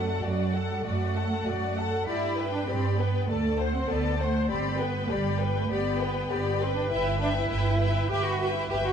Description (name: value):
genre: quick classical-period movement for string orchestra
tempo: 99 BPM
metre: 4/4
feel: straight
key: G major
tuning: A4 = 444 Hz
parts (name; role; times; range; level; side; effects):
- rich symphonic violin section; melody; 0.0-8.9 s; F#5 to B5; -37 LUFS; left 6 dB; none
- rich symphonic violin section; second line; 0.0-8.9 s; B4 to F#5; -33 LUFS; left 4 dB; none
- rich symphonic viola section; accompaniment; 0.0-8.9 s; F#4 to C5; -32 LUFS; equal; none
- clear symphonic cello section; bass; 0.0-8.9 s; F#3 to G4; -31 LUFS; right 2 dB; none
- clear symphonic double bass section; bass; 0.0-8.9 s; G1 to G2; -29 LUFS; right 2 dB; none
room: moderate scoring stage reverb, RT60 2.0 s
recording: dark, warm production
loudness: -25 LUFS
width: side -7 dB against mid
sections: 0.0-8.9 A section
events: none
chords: 0.0 D/F#; 2.1 G; 3.3 D7; 4.5 G; 6.9 Em/G